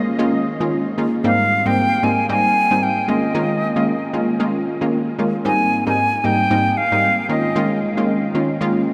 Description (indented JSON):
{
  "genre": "afrobeats",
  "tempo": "114 BPM",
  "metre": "4/4",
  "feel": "swing 58% on 16ths",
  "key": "Ab major",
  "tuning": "A4 = 440 Hz",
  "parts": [
    { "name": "analog pluck", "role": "accompaniment", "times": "0.0-8.8 s", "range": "Ab2 to F4", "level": "-21 LUFS", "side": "equal", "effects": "chorus" },
    { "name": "bright concert flute", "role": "melody", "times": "1.2-7.8 s", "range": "Eb5 to Ab5", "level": "-22 LUFS", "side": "equal", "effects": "tape echo" }
  ],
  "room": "wet huge ambient reverb, RT60 8.4 s",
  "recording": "dreamy mix soaked in reverb",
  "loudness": "-18 LUFS",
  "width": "mono",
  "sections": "0.0-8.9 A section",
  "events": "none",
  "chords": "0.0 Eb7sus4; 1.2 Abmaj9; 3.1 Eb7sus4; 5.5 Abmaj9; 7.3 Eb7sus4"
}